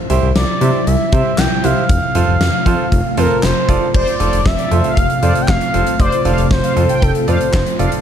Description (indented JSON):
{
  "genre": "synth-pop",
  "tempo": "117 BPM",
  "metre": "4/4",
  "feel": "straight",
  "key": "F major",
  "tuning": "A4 = 440 Hz",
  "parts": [
    { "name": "soft string machine", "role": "sustained chords", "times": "0.0-8.0 s", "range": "C3 to F4", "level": "-21 LUFS", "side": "equal", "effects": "ensemble chorus" },
    { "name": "clear grand piano", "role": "accompaniment", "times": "0.1-8.0 s", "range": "E4 to D5", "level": "-22 LUFS", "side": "right 6 dB", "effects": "none" },
    { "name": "smooth synth bass", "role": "bass", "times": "0.1-7.9 s", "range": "F1 to C3", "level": "-17 LUFS", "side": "left 1 dB", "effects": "none" },
    { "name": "huge arena drum kit", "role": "drums", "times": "0.1-8.0 s", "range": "crash cymbal, handclaps, hi-hat, kick drum, snare drum", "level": "-18 LUFS", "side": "left 1 dB", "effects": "none" },
    { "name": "expressive portamento lead", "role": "melody", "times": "0.4-7.8 s", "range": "A4 to G5", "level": "-19 LUFS", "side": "equal", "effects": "chorus, tape echo" },
    { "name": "mellow synth brass", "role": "second line", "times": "3.9-7.9 s", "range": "C5 to G5", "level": "-23 LUFS", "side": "left 2 dB", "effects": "chorus, tape echo" }
  ],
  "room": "light reverb, small room ambience",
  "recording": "dark, warm production",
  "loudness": "-12 LUFS",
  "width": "side -9 dB against mid",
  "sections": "0.0-3.9 A section; 3.9-8.0 B section",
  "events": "none",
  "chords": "0.0 C; 1.9 F",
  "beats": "0.36 0.87 1.38 | 1.89 2.41 2.92 3.43 | 3.94 4.46 4.97 5.48 | 6.00 6.51 7.02 7.54"
}